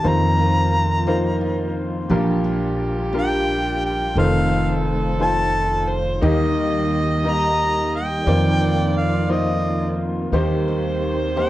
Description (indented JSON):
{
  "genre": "acoustic folk-pop ballad",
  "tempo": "58 BPM (dotted quarters)",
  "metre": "6/8",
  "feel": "straight",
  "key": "Bb major",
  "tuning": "A4 = 440 Hz",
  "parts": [
    { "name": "warm harmonica", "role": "melody", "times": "0.0-11.5 s", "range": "Eb5 to Bb5", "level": "-22 LUFS", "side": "equal", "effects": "none" },
    { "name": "bright upright piano", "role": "accompaniment", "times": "0.0-11.5 s", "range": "F1 to Eb5", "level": "-24 LUFS", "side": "left 2 dB", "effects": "none" },
    { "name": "dark studio string section", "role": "sustained chords", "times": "0.0-11.5 s", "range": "D3 to G4", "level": "-31 LUFS", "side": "equal", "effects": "none" },
    { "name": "picked steel-string acoustic guitar", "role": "arpeggios", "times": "0.0-11.5 s", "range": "Eb3 to G4", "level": "-25 LUFS", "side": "right 2 dB", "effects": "none" },
    { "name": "upright bass", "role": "bass", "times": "0.0-11.5 s", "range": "F1 to F2", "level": "-23 LUFS", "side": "equal", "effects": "none" },
    { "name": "dark violin", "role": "second line", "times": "2.1-11.5 s", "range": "G4 to Eb5", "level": "-27 LUFS", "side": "right 3 dB", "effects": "none" }
  ],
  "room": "moderate studio reverb, RT60 0.5 s",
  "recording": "worn, warbling old tape, cassette tape, warbly pitch drift",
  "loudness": "-18 LUFS",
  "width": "side -15 dB against mid",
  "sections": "0.0-2.1 A section; 2.1-11.5 B section",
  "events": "none",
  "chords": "0.0 F7sus4; 2.1 Bb6; 4.2 F7; 6.2 Eb; 8.3 F7sus4; 10.3 Eb6",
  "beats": "| 0.04 1.07 | 2.10 3.13 | 4.16 5.19 | 6.21 7.24 | 8.27 9.29 | 10.33 11.36"
}